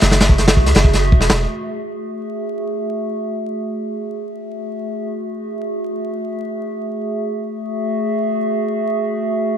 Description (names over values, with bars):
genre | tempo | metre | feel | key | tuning
drum and bass, jungle | free time | none | none | F# minor | A4 = 440 Hz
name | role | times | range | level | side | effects
warbly tape-like pad | sustained chords | 0.0-9.6 s | A3 to E5 | -21 LUFS | right 1 dB | chorus, built-in reverb, vintage 12-bit sampler grit
soft dub sub bass | bass | 0.0-1.5 s | E1 to C#2 | -16 LUFS | equal | none
crunchy breakbeat drum kit | drums | 0.0-1.4 s | hi-hat, kick drum, snare drum | -13 LUFS | equal | none
room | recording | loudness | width
light reverb, small room ambience | vinyl crackle | -17 LUFS | side -9 dB against mid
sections
0.0-1.5 A section; 1.5-9.6 B section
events
drop 0.0-1.5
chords
0.0 F#m9